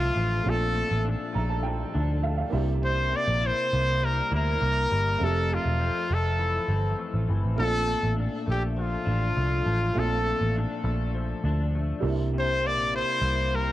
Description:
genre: indie pop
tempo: 101 BPM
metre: 4/4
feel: straight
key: unclear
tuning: A4 = 440 Hz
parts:
  - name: brilliant trumpet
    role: melody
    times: 0.0-13.7 s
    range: F4 to D5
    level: -28 LUFS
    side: left 1 dB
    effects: wide subtle chorus, analog delay
  - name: clean electric guitar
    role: accompaniment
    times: 0.0-13.7 s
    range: F2 to E4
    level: -33 LUFS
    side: left 6 dB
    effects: ensemble chorus, vibrato effect, cassette tape
  - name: dark upright piano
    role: accompaniment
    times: 0.0-13.7 s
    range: G3 to Bb5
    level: -36 LUFS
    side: right 7 dB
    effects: cassette tape
  - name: vintage muted picked electric bass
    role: bass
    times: 0.0-13.7 s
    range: E1 to D2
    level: -26 LUFS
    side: equal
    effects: none
room: light reverb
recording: home recording on cassette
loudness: -24 LUFS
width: side -14 dB against mid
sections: 0.0-13.7 A section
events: upright piano fill 1.0-2.8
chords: 0.0 Bbmaj7; 2.5 C7; 5.2 Fmaj7; 7.6 Bbmaj7; 12.0 C7

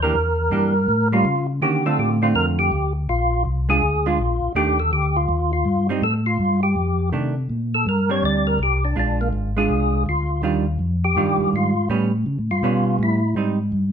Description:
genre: soul jazz organ trio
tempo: 164 BPM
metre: 4/4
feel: swing 64% on 8ths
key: Bb major from 7.5 s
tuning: A4 = 440 Hz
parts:
  - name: percussive tonewheel organ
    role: melody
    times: 0.0-13.4 s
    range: Bb3 to D5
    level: -22 LUFS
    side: left 1 dB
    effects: slow rotary speaker, chorus vibrato
  - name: hollow-body jazz guitar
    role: accompaniment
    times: 0.0-13.6 s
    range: D3 to G4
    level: -23 LUFS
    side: right 5 dB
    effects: none
  - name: mellow tonewheel organ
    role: bass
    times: 0.0-13.9 s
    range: Ab1 to D3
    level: -21 LUFS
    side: left 1 dB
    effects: chorus vibrato, slow rotary speaker
room: moderate studio reverb, RT60 0.8 s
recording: minimal, uncompressed stereo recording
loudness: -18 LUFS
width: side -8 dB against mid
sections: 0.0-7.5 A section; 7.5-13.9 B section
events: tonewheel organ solo 7.5-13.9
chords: 0.1 Em7b5; 0.9 A7b9; 1.6 Dm7; 3.1 Bb7; 4.6 Ebmaj9#11; 6.0 Fadd9; 6.8 F13; 7.5 Bb69; 9.0 Bb7; 10.4 Ebmaj9; 11.9 A9; 13.4 Abmaj7

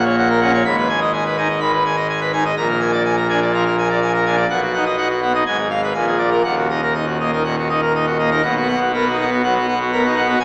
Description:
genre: classical, organ toccata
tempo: 124 BPM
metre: 4/4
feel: straight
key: unclear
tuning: A4 = 440 Hz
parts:
  - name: pipe organ, full organ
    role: solo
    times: 0.0-10.4 s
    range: Eb1 to Cb6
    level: -15 LUFS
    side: equal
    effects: none
room: wet church reverb, RT60 2.7 s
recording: small speaker sound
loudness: -15 LUFS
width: side -39 dB against mid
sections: 0.0-8.4 A section; 8.4-10.4 B section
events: none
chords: 0.0 Gb/Bb; 0.6 Abm; 2.6 Bb7; 4.5 B; 5.5 Fdim/Ab; 5.9 Bb7; 6.4 Ebm; 8.4 Bmaj7

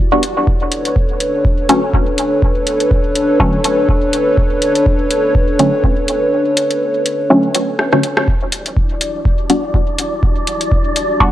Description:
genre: dub techno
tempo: 123 BPM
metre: 4/4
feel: swing 56% on 16ths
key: unclear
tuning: A4 = 438 Hz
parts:
  - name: dark analog pad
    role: sustained chords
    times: 0.0-11.3 s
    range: D4 to D5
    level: -17 LUFS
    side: equal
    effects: chorus, sidechain pumping
  - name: filtered dub chord stab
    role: stabs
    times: 0.1-11.3 s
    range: D3 to F#4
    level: -15 LUFS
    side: equal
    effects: chorus, phaser, sidechain pumping, dub echo
  - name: booming analog drum machine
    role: drums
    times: 0.2-11.1 s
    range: hi-hat, rim click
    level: -17 LUFS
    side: equal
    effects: none
  - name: electronic kick drum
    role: drums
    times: 0.5-11.3 s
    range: none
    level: -15 LUFS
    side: equal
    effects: none
  - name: wind-like tuned noise texture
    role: texture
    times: 8.8-11.3 s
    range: D4 to D5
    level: -21 LUFS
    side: left 1 dB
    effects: built-in reverb, sidechain pumping
room: light reverb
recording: dry, gritty hardware recording, cassette tape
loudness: -12 LUFS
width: side -13 dB against mid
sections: 0.0-11.3 A section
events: kick drops out 6.3-8.3; drum fill 7.8-8.3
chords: 0.5 Bm9; 8.3 Em9

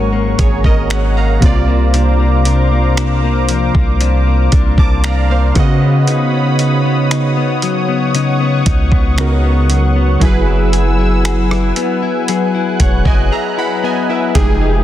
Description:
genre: contemporary R&B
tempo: 58 BPM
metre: 4/4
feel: straight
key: unclear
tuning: A4 = 442 Hz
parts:
  - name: warm analog keys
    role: accompaniment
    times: 0.0-14.8 s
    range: C3 to D6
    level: -19 LUFS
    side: right 3 dB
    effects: chorus
  - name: warm analog pad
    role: sustained chords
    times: 0.0-14.8 s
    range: F3 to Gb6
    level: -21 LUFS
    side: left 1 dB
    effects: chorus
  - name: direct-recorded clean electric guitar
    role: arpeggios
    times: 0.0-14.8 s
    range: Ab2 to Ab4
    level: -19 LUFS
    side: left 9 dB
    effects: digital delay
  - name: warm 808-style bass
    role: bass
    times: 0.0-14.8 s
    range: Fb1 to Db3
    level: -14 LUFS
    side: equal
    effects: none
  - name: dusty soul sampler-style drum kit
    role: drums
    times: 0.4-14.6 s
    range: finger snaps, hi-hat, kick drum, rim click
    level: -14 LUFS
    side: equal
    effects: soft clipping on snare
room: digital ambience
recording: dense, heavily limited modern master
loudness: -11 LUFS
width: side -12 dB against mid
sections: 0.0-14.4 A section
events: synth keys fill 4.5-6.1; break 13.3-14.4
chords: 0.0 Ab9sus4; 1.4 C9sus4; 5.6 Db9sus4; 10.2 Gb9sus4

